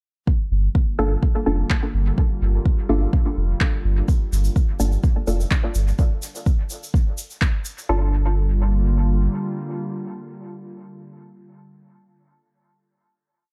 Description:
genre	dub techno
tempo	126 BPM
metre	4/4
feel	swing 53% on 16ths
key	G minor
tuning	A4 = 437 Hz
part	warbly tape-like pad	sustained chords	0.3-11.3 s	D3 to F4	-33 LUFS	equal	chorus, built-in reverb, phaser, sidechain pumping
part	electronic kick drum	drums	0.3-7.5 s	none	-21 LUFS	equal	none
part	soft dub sub bass	bass	0.5-9.3 s	F1 to G1	-22 LUFS	equal	tube saturation, sidechain pumping
part	filtered dub chord stab	stabs	1.0-11.3 s	Bb3 to A4	-29 LUFS	equal	chorus, phaser, sidechain pumping, dub echo
part	electronic handclaps	drums	1.7-7.5 s	none	-31 LUFS	equal	dub echo
part	tube shaker	percussion	4.1-7.9 s	none	-38 LUFS	equal	none
room	digital ambience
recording	dark, warm production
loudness	-21 LUFS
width	mono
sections	0.3-7.9 groove; 7.9-11.7 final chord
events	none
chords	0.3 Gm7

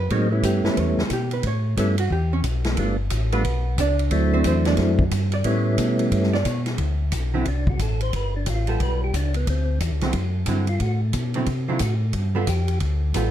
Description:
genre	soul jazz organ trio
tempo	179 BPM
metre	4/4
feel	swing 62% on 8ths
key	D major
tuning	A4 = 436 Hz
part	archtop guitar, miked and amplified	accompaniment	0.0-13.3 s	D3 to D5	-27 LUFS	right 4 dB	none
part	mellow tonewheel organ	bass	0.0-13.3 s	G1 to C3	-22 LUFS	equal	slow rotary speaker
part	percussive tonewheel organ	melody	0.1-12.8 s	F#3 to C5	-24 LUFS	equal	slow rotary speaker
part	swinging big-band drum kit	drums	0.1-13.2 s	hi-hat, kick drum, ride cymbal, snare drum	-28 LUFS	equal	none
room	light reverb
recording	dark, warm production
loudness	-20 LUFS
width	side -11 dB against mid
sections	0.0-6.8 A section; 6.8-13.3 A section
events	hollow-body jazz guitar solo 0.0-6.8; tonewheel organ solo 6.8-13.3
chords	0.1 A9; 2.8 G9; 4.1 D9; 5.5 A9; 6.8 D7(no3); 8.1 G9; 9.5 D9; 12.1 G9

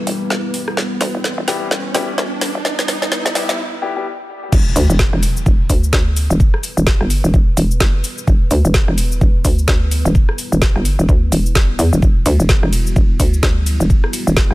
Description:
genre	bass house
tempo	128 BPM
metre	4/4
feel	swing 59% on 16ths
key	E minor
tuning	A4 = 440 Hz
part	dark analog pad	sustained chords	0.0-14.5 s	G3 to B4	-28 LUFS	left 1 dB	chorus, sidechain pumping
part	hollow knocking FM bass	bass	0.0-14.5 s	E1 to E2	-16 LUFS	equal	overdrive, sidechain pumping, high-pass filter
part	riser and impact	sound effects	0.0-6.4 s	none	-26 LUFS	right 1 dB	none
part	garage drum kit	drums	0.1-14.5 s	crash cymbal, hi-hat, ride cymbal, rim click, shaker, snare drum	-21 LUFS	equal	none
part	warm concert grand piano	stabs	1.5-4.0 s	G3 to G4	-25 LUFS	left 4 dB	sidechain pumping, digital delay
part	electronic kick drum	drums	4.5-14.5 s	none	-14 LUFS	equal	none
room	little or no reverb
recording	high-pass filter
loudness	-13 LUFS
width	side -18 dB against mid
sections	0.0-4.5 A section; 4.5-14.5 B section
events	build-up 0.0-4.5; drum fill 0.0-3.6; riser 0.0-3.6; filter sweep on analog synth pad 0.0-4.5; break 3.6-4.5; drop 4.5-14.5; impact 4.5-6.4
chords	0.0 Em

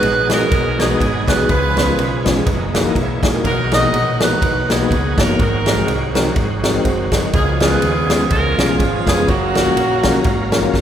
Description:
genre	uptempo gospel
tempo	123 BPM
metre	4/4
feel	swing 56% on 8ths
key	F# major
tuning	A4 = 440 Hz
part	bright saxophone section	melody	0.0-10.7 s	A#3 to D#5	-19 LUFS	right 2 dB	none
part	tine electric piano	accompaniment	0.0-10.8 s	G#2 to D#5	-20 LUFS	left 2 dB	medium stereo tremolo
part	bright tonewheel organ	sustained chords	0.0-10.8 s	D#3 to E#5	-24 LUFS	right 2 dB	slow rotary speaker, overdrive, chorus vibrato
part	hollow-body short-scale fingered electric bass	bass	0.0-10.8 s	E#1 to D#2	-22 LUFS	equal	none
part	swinging big-band drum kit	drums	0.0-10.8 s	kick drum, ride cymbal, snare drum	-18 LUFS	equal	none
room	wet church reverb, RT60 2.6 s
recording	recorded in a church or concert hall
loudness	-14 LUFS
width	side -9 dB against mid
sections	0.0-10.8 A section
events	none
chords	0.0 G#m7; 1.5 C#7; 2.5 F#13; 3.4 Bmaj7; 5.4 G#7; 7.3 C#7; 9.3 F#maj7

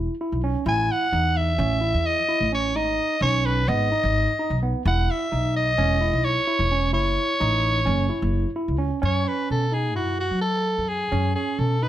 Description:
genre	progressive instrumental, progressive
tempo	258 BPM (eighths)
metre	9/8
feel	straight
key	F# dorian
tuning	A4 = 442 Hz
part	overdriven tine electric piano	arpeggios	0.0-11.9 s	B3 to A4	-28 LUFS	right 2 dB	none
part	upright bass	bass	0.0-11.9 s	E1 to F#3	-24 LUFS	equal	none
part	raspy soprano saxophone	melody	0.7-11.9 s	F#4 to G#5	-24 LUFS	equal	none
room	light reverb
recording	none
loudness	-20 LUFS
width	side -12 dB against mid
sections	0.0-9.0 A section; 9.0-11.9 B section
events	none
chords	0.0 E5; 0.7 A; 2.8 G#m; 4.9 E5; 6.9 F#m7; 9.0 F#madd9

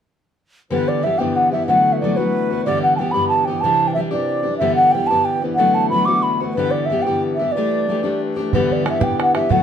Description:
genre	celtic folk, Celtic jig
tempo	123 BPM (dotted quarters)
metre	6/8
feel	straight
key	G major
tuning	A4 = 439 Hz
part	baroque flute	melody	0.7-9.6 s	B4 to D6	-18 LUFS	right 1 dB	none
part	fingerpicked steel-string acoustic guitar	accompaniment	0.7-9.6 s	G2 to G4	-20 LUFS	left 3 dB	none
part	pedal harmonium	drone	0.7-9.6 s	G2 to E3	-28 LUFS	right 2 dB	none
part	bodhran	percussion	8.5-9.6 s	none	-21 LUFS	right 5 dB	none
room	moderate small room reverb, RT60 0.5 s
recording	band playing live in one room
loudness	-16 LUFS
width	side -8 dB against mid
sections	0.7-8.5 A section; 8.5-9.6 A section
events	none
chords	0.7 G6; 1.7 D6; 2.7 G6; 3.6 Cadd9; 4.6 G6; 5.6 D6; 6.6 G6; 7.5 Gsus2; 8.5 G6

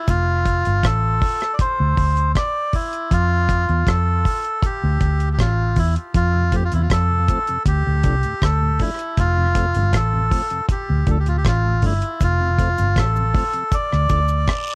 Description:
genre	dub reggae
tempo	79 BPM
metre	4/4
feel	straight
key	F major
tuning	A4 = 440 Hz
part	melodica	melody	0.0-14.8 s	E4 to D5	-21 LUFS	equal	cassette tape, dub echo
part	vintage muted fingered electric bass	bass	0.1-14.5 s	F1 to F2	-18 LUFS	equal	tube saturation
part	deep reggae drum kit	drums	0.1-14.7 s	hi-hat, kick drum, rim click	-20 LUFS	equal	cassette tape
part	cabasa and guiro	percussion	0.1-0.3, 12.2-14.8 s	none	-35 LUFS	right 4 dB	high-pass filter on perc, dub echo
part	mellow tonewheel organ	accompaniment	6.3-14.8 s	D2 to D4	-29 LUFS	equal	slow rotary speaker, high-pass filter, cassette tape
room	little or no reverb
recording	home recording on cassette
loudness	-16 LUFS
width	side -28 dB against mid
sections	0.0-14.8 A section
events	break 0.1-12.2; filter sweep 12.2-14.8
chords	0.1 F; 1.6 Cadd9/D; 3.1 F; 4.6 D5; 6.1 F; 7.7 Dm; 9.2 F; 10.7 Dm; 12.2 F; 13.7 Dm

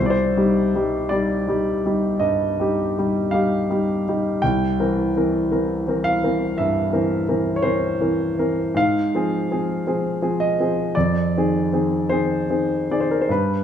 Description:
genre	classical, romantic nocturne for solo piano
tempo	48-58 BPM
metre	4/4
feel	rubato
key	C minor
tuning	A4 = 440 Hz
part	warm grand piano	solo	0.0-13.6 s	C2 to G5	-18 LUFS	equal	none
room	moderate recital hall reverb, RT60 1.6 s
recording	minimal, uncompressed stereo recording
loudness	-18 LUFS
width	side -9 dB against mid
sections	0.0-13.6 A section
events	none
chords	0.0 Cm; 4.4 C7; 8.8 Fm/Ab; 10.9 Fm7

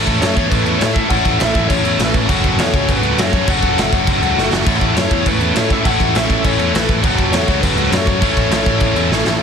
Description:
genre	punk rock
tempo	202 BPM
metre	4/4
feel	straight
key	A major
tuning	A4 = 443 Hz
part	distorted electric guitar	riff	0.0-9.4 s	F#3 to A4	-23 LUFS	left 2 dB	overdrive
part	tight distorted guitar	riff	0.0-9.4 s	D3 to A4	-22 LUFS	left 16 dB	distortion
part	tight distorted guitar	riff	0.0-9.4 s	D3 to A4	-20 LUFS	right 16 dB	distortion
part	growling picked electric bass	bass	0.0-9.4 s	F#1 to A2	-22 LUFS	equal	overdrive
part	raw garage drum kit	drums	0.1-9.3 s	crash cymbal, kick drum, snare drum, splash cymbal	-17 LUFS	equal	none
part	lead guitar through a small cranked amp	melody	0.2-9.1 s	B4 to F#5	-22 LUFS	left 4 dB	overdrive, tape echo
room	little or no reverb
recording	dense, heavily limited modern master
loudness	-13 LUFS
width	side -7 dB against mid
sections	0.0-9.4 A section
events	drum fill 4.4, 9.1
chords	0.0 A; 2.3 F#m; 4.7 A; 7.0 F#m; 8.2 A

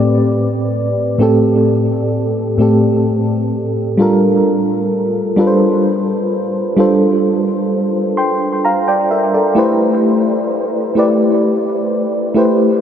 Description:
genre	R&B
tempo	43 BPM (dotted quarters)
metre	6/8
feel	straight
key	A minor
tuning	A4 = 441 Hz
part	mellow FM electric piano	solo	0.0-12.8 s	A2 to C6	-12 LUFS	equal	chorus, tremolo, tape echo
room	wet huge ambient reverb, RT60 7.9 s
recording	dreamy mix soaked in reverb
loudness	-12 LUFS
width	side -8 dB against mid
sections	0.0-12.8 A section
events	none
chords	0.0 Am9; 4.0 Gm9; 9.6 Am9

